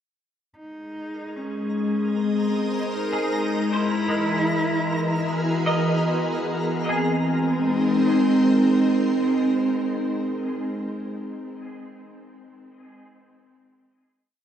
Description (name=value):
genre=ambient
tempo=free time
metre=none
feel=none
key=Ab mixolydian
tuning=A4 = 440 Hz
part: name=dark cello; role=melody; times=0.6-10.8 s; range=C4 to E4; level=-24 LUFS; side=right 2 dB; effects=diffuse ambient delay
part: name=soft additive organ-like pad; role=sustained chords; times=1.2-10.8 s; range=E3 to Eb5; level=-24 LUFS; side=left 1 dB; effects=ensemble chorus, built-in reverb
part: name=twinkling granular texture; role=texture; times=2.1-6.9 s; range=Bb4 to Bb5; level=-33 LUFS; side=equal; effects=built-in reverb
part: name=semi-hollow electric guitar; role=arpeggios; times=3.1-11.5 s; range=G#3 to Eb5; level=-30 LUFS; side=left 1 dB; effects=ensemble chorus, diffuse ambient delay
room=wet cathedral reverb, RT60 5.2 s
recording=none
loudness=-20 LUFS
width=side -9 dB against mid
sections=0.6-6.9 A section; 6.9-10.1 final chord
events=fade-in on clean electric guitar 0.6-6.9; fade-in on synth texture 0.6-6.9; fade-in on cello 0.6-6.9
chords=0.6 Ab; 3.7 Eadd9; 6.9 Ab